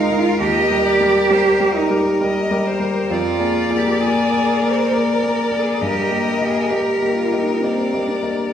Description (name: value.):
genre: classical, slow romantic movement for piano quartet.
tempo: 66 BPM.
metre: 3/4.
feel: rubato.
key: Eb major.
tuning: A4 = 440 Hz.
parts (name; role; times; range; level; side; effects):
rich violin; melody; 0.0-8.5 s; Bb4 to F5; -25 LUFS; left 4 dB; none.
rich cello; second line; 0.0-8.5 s; C4 to C5; -20 LUFS; right 4 dB; none.
rich violin; second line; 0.0-8.5 s; Bb4; -26 LUFS; left 2 dB; none.
clear grand piano; accompaniment; 0.0-8.5 s; Eb2 to Eb5; -19 LUFS; left 2 dB; none.
room: wet recital hall reverb, RT60 1.4 s.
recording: heard from further back in the room.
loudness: -15 LUFS.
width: side -9 dB against mid.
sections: 0.0-8.5 A section.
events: none.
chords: 0.4 Eb; 3.1 Bb7/F; 5.8 Eb/G.